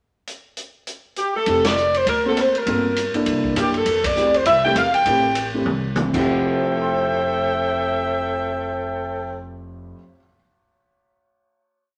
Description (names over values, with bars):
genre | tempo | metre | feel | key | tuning
jazz, big band swing | 201 BPM | 4/4 | swing 60% on 8ths | F major | A4 = 445 Hz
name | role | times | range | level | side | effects
swinging big-band drum kit | drums | 0.3-6.2 s | crash cymbal, hi-hat, kick drum, ride cymbal, rim click, snare drum, toms | -29 LUFS | equal | none
clear saxophone section | melody | 1.2-9.4 s | G4 to G5 | -22 LUFS | equal | none
dark upright piano | accompaniment | 1.5-10.4 s | F2 to C7 | -27 LUFS | equal | none
upright bass | bass | 1.5-9.9 s | F1 to Gb2 | -33 LUFS | equal | none
room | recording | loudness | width
wet studio reverb, RT60 0.9 s | none | -20 LUFS | mono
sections
0.3-1.5 pickup bar; 1.5-6.3 A section; 6.3-8.6 final chord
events
band accent 1.6, 4.0; drum fill 5.7-6.3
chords
0.3 N.C.; 1.5 Fmaj9; 2.1 D7b13; 2.7 Gm11; 3.3 C13; 3.9 Fmaj9